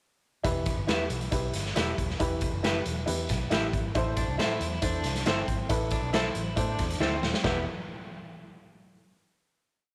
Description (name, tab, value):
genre	uptempo 1960s-style soul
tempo	137 BPM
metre	4/4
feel	straight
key	E minor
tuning	A4 = 440 Hz
part	warm upright piano	accompaniment	0.4-7.6 s	E2 to C5	-35 LUFS	equal	none
part	vintage muted fingered electric bass	bass	0.4-7.6 s	D#1 to A2	-36 LUFS	equal	none
part	raw garage drum kit	drums	0.4-7.5 s	hi-hat, kick drum, snare drum	-33 LUFS	equal	none
part	congas	percussion	0.5-7.7 s	none	-45 LUFS	equal	none
part	electric guitar through a small old amp	stabs	0.9-7.6 s	E4 to E5	-36 LUFS	equal	none
part	electric guitar at the edge of break-up	riff	4.2-7.6 s	B3 to E4	-39 LUFS	equal	tremolo
room	light reverb, small room ambience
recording	none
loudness	-29 LUFS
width	mono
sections	0.4-7.4 A section; 7.4-9.2 final chord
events	drum fill 7.0-7.4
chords	0.4 Em; 4.0 Am; 7.4 Em